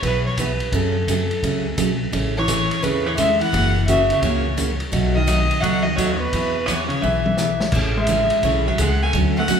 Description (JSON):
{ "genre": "country, western swing", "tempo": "171 BPM", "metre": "4/4", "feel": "swing 64% on 8ths", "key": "A major", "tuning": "A4 = 440 Hz", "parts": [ { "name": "dark fiddle", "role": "melody", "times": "0.0-9.6 s", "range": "A4 to G#5", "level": "-22 LUFS", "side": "left 1 dB", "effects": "none" }, { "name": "picked steel-string acoustic guitar", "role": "accompaniment", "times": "0.0-9.6 s", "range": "B2 to G#4", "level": "-24 LUFS", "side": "right 3 dB", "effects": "none" }, { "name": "upright bass", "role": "bass", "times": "0.0-9.6 s", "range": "F#1 to F#2", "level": "-24 LUFS", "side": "left 1 dB", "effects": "none" }, { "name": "vintage drum kit", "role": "drums", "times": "0.0-9.6 s", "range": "crash cymbal, hi-hat, kick drum, ride cymbal, snare drum, toms", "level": "-26 LUFS", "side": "left 1 dB", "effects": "none" }, { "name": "vintage hollow-body jazz guitar", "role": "second line", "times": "2.4-9.6 s", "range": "A#2 to A3", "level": "-25 LUFS", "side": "equal", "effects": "none" } ], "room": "wet large studio reverb, RT60 1.4 s", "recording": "band playing live in one room", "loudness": "-17 LUFS", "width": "side -7 dB against mid", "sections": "0.0-9.6 A section", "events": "drum fill 7.0-7.7", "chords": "0.0 E; 0.7 F#madd9; 2.1 Amaj7; 3.5 F#7; 4.9 B7; 6.3 E; 7.7 Amaj7" }